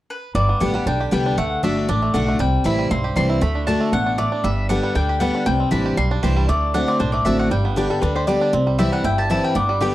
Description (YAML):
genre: bluegrass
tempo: 235 BPM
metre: 4/4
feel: straight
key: G major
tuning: A4 = 440 Hz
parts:
  - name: mandolin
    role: melody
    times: 0.1-9.9 s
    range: B4 to C6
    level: -24 LUFS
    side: left 2 dB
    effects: none
  - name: picked steel-string acoustic guitar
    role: accompaniment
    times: 0.3-9.9 s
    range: G2 to G4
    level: -21 LUFS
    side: left 1 dB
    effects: none
  - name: upright bass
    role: bass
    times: 0.3-9.9 s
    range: G1 to D2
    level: -22 LUFS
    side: equal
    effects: none
  - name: bluegrass banjo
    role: melody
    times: 0.4-9.9 s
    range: G3 to G4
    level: -26 LUFS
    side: right 5 dB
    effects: none
  - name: lap resonator guitar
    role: second line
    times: 7.8-9.9 s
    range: G4 to G5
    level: -24 LUFS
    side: left 1 dB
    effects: none
room: studio ambience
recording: dry, close 1970s-style studio recording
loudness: -17 LUFS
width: side -15 dB against mid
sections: 0.3-8.5 A section; 8.5-9.9 B section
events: none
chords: 0.3 G; 1.4 D; 2.4 C; 3.4 D; 4.4 G; 5.5 Cadd9; 6.5 D7; 7.5 G; 8.5 C